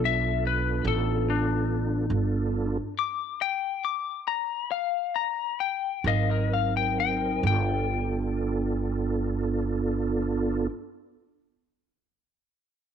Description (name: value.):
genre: slow blues.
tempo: 42-48 BPM (dotted quarters).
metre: 12/8.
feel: straight.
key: G mixolydian.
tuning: A4 = 440 Hz.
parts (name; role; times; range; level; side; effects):
mellow tonewheel organ; sustained chords; 0.0-10.7 s; Gb3 to Bb4; -29 LUFS; right 3 dB; slow rotary speaker, chorus vibrato.
upright bass; bass; 0.0-10.7 s; G1 to B1; -28 LUFS; right 3 dB; none.
lightly driven lead guitar; melody; 0.1-10.7 s; D4 to D6; -28 LUFS; left 12 dB; none.
room: light reverb, small room reverb.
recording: none.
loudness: -25 LUFS.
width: side -8 dB against mid.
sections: 0.0-7.4 A section; 7.4-12.9 B section.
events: slowing down 0.4-7.4; stop 2.1-6.0.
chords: 0.0 G9 (rootless); 6.0 Ab9; 7.4 G9.